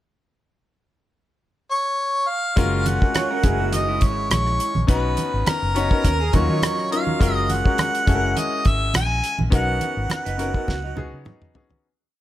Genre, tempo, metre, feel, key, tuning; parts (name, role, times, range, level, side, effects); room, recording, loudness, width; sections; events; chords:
lush 1970s-style soul; 104 BPM; 4/4; swing 54% on 16ths; F# major; A4 = 440 Hz
clear harmonica; melody; 1.7-11.2 s; A#4 to G#5; -24 LUFS; equal
clear concert grand piano; accompaniment; 2.6-11.9 s; F#3 to C#5; -26 LUFS; left 5 dB
vintage muted fingered electric bass; bass; 2.6-11.2 s; F#1 to D#3; -24 LUFS; equal
damped 70s drum kit; drums; 2.6-11.8 s; hi-hat, kick drum, rim click, snare drum, toms; -21 LUFS; equal
congas; percussion; 2.6-11.8 s; -29 LUFS; right 3 dB
electric guitar through a small old amp; riff; 3.1-11.7 s; F#3 to C#5; -29 LUFS; right 7 dB; analog chorus
light reverb, small room ambience; -18 LUFS; side -14 dB against mid
0.2-2.6 pickup bar; 2.6-11.8 verse
fade-out 9.5-11.8; drum fill 10.7-11.8
0.2 N.C.; 2.6 F#maj7; 3.4 F#7; 4.9 Bmaj7; 6.0 D#m7; 7.2 F#maj7; 8.1 F#7; 9.5 Bmaj7; 10.7 C#9sus4